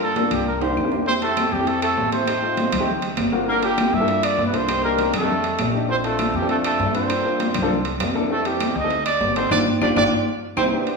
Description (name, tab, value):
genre	Afro-Cuban jazz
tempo	199 BPM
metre	4/4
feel	straight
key	F major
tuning	A4 = 440 Hz
part	breathy trumpet	melody	0.0-10.6 s	G4 to E5	-23 LUFS	right 3 dB	none
part	warm concert grand piano	accompaniment	0.0-10.9 s	A3 to C5	-25 LUFS	left 2 dB	none
part	upright bass	bass	0.0-10.7 s	G1 to G2	-29 LUFS	left 2 dB	none
part	congas	percussion	0.0-11.0 s	none	-26 LUFS	left 1 dB	none
part	timbales	percussion	0.2-11.0 s	none	-28 LUFS	right 4 dB	none
part	claves	percussion	0.3-10.6 s	none	-35 LUFS	left 3 dB	none
part	warm tenor saxophone	second line	1.1-10.6 s	G3 to E4	-28 LUFS	left 2 dB	none
room	wet recital hall reverb, RT60 1.3 s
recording	recorded in a church or concert hall, studio reverb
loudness	-18 LUFS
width	side -3 dB against mid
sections	0.0-1.1 A section; 1.1-10.7 B section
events	drum fill 0.6-1.1, 9.8-10.7; band accent 9.5-10.7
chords	0.5 C7; 1.1 Fmaj9; 2.3 Am7b5; 2.9 D7alt; 3.5 Gm7; 4.7 Cm9; 5.3 F13; 5.9 Bbmaj9; 7.1 Gm9; 7.7 C13; 8.3 Fmaj9; 8.9 D7b9; 9.5 G5; 10.1 C